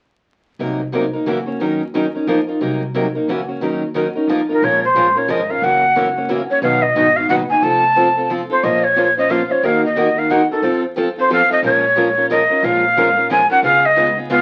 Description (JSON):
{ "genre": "acoustic string swing (jazz manouche)", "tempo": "180 BPM", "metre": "3/4", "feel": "swing 60% on 8ths", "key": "Bb minor", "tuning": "A4 = 440 Hz", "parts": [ { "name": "picked acoustic archtop guitar", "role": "accompaniment", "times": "0.6-14.4 s", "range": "B2 to C5", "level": "-24 LUFS", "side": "equal", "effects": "none" }, { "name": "picked steel-string acoustic guitar", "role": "accompaniment", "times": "0.6-14.4 s", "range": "B2 to C5", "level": "-23 LUFS", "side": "equal", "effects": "none" }, { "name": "upright bass", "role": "bass", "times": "0.6-14.4 s", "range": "F1 to F2", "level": "-32 LUFS", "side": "equal", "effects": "none" }, { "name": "breathy jazz flute", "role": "melody", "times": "4.5-14.4 s", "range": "A4 to A5", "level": "-16 LUFS", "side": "equal", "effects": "none" } ], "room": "wet studio reverb, RT60 0.5 s", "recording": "very old 78 rpm record, vinyl crackle", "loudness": "-16 LUFS", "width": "mono", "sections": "0.6-4.6 A section; 4.6-12.6 B section; 12.6-14.4 C section", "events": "none", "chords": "0.6 Cm7b5; 1.3 Gb7; 1.6 Ebm7; 2.3 F7sus4; 2.6 Cm7b5; 3.3 Gb7; 3.6 Ebm7; 4.3 F7sus4; 4.6 Bbm7; 5.6 Gb7; 6.6 B; 7.6 F; 8.6 Bbmadd9; 9.6 Ebm; 10.6 F; 11.6 Bbm7; 13.6 Db7", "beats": "| 0.59 0.93 1.26 | 1.60 1.93 2.27 | 2.61 2.94 3.28 | 3.61 3.95 4.28 | 4.62 4.95 5.29 | 5.62 5.95 6.29 | 6.62 6.96 7.29 | 7.62 7.96 8.29 | 8.62 8.96 9.29 | 9.62 9.96 10.29 | 10.63 10.96 11.29 | 11.63 11.96 12.29 | 12.63 12.96 13.30 | 13.63 13.96 14.30" }